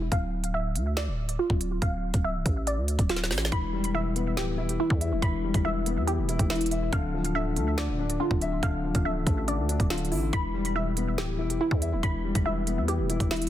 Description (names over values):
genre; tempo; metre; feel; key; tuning
hip hop, drill; 141 BPM; 4/4; half-time; E phrygian; A4 = 439 Hz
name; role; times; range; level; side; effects
glassy wavetable pluck; arpeggios; 0.0-13.5 s; E4 to B5; -32 LUFS; right 2 dB; chorus, phaser, low-pass filter, digital delay
growling 808-style bass; bass; 0.0-13.5 s; C1 to E2; -29 LUFS; equal; none
drill drum kit; drums; 0.1-13.5 s; hi-hat, kick drum, snare drum; -28 LUFS; equal; none
dark concert grand piano; accompaniment; 3.5-13.5 s; D3 to E5; -30 LUFS; left 6 dB; low-pass filter
room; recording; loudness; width
digital ambience; dense, heavily limited modern master; -25 LUFS; side -12 dB against mid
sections
0.0-13.5 A section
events
filter sweep 0.0-3.5; drum fill 3.1-3.5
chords
0.1 Dmadd9; 3.5 Em; 6.9 Dmadd9; 10.3 Em